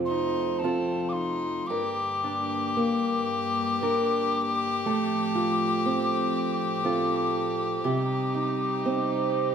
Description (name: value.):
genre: celtic folk, Celtic slow air.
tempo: 55-62 BPM.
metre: 3/4.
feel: rubato.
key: unclear.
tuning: A4 = 440 Hz.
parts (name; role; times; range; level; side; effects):
fingerpicked acoustic archtop guitar; accompaniment; 0.0-9.5 s; G2 to Bb4; -27 LUFS; right 3 dB; none.
warm studio string section; sustained chords; 0.0-9.5 s; F2 to Eb4; -36 LUFS; left 4 dB; none.
hollow wooden whistle; melody; 0.1-9.5 s; A5 to D6; -30 LUFS; left 2 dB; none.
clear fiddle; second line; 0.1-9.5 s; C4 to G4; -33 LUFS; left 7 dB; none.
room: moderate large studio reverb, RT60 1.2 s.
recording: band playing live in one room.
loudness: -24 LUFS.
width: side -7 dB against mid.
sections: 0.0-9.5 A section.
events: none.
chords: 0.0 F; 1.7 Gm; 4.8 F/A; 7.8 Cm.